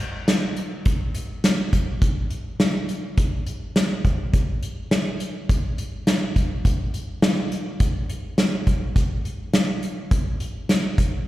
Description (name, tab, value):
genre	country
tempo	104 BPM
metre	4/4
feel	straight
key	none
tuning	none
part	unplugged drum kit	drums	0.3-11.1 s	hi-hat, kick drum, snare drum	-21 LUFS	equal	none
room	wet plate reverb, RT60 2.3 s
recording	live gig heard through the venue's PA, recital hall reverb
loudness	-21 LUFS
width	side -16 dB against mid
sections	0.0-11.3 A section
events	none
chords	none